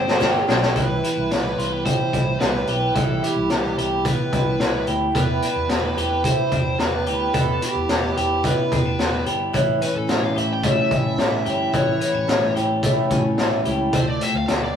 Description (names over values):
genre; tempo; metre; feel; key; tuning
jangly indie pop; 109 BPM; 4/4; straight; C major; A4 = 439 Hz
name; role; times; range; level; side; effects
fuzz lead guitar; melody; 0.0-14.8 s; G4 to G5; -26 LUFS; equal; distortion
picked twelve-string acoustic guitar; accompaniment; 0.0-14.8 s; G2 to B4; -26 LUFS; right 2 dB; none
twelve-string electric guitar; arpeggios; 0.0-14.8 s; E3 to G4; -25 LUFS; left 2 dB; none
vintage muted fingered electric bass; bass; 0.0-14.7 s; G1 to E2; -29 LUFS; equal; none
raw garage drum kit; drums; 0.1-14.6 s; hi-hat, kick drum, snare drum; -22 LUFS; equal; none
room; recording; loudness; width
light reverb; rough rehearsal-room recording, small room ambience; -18 LUFS; side -8 dB against mid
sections
0.8-14.8 A section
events
drum fill 0.0-0.8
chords
0.0 G7sus4; 0.8 Cmaj7; 5.2 Em7; 9.5 A7; 13.9 Dm7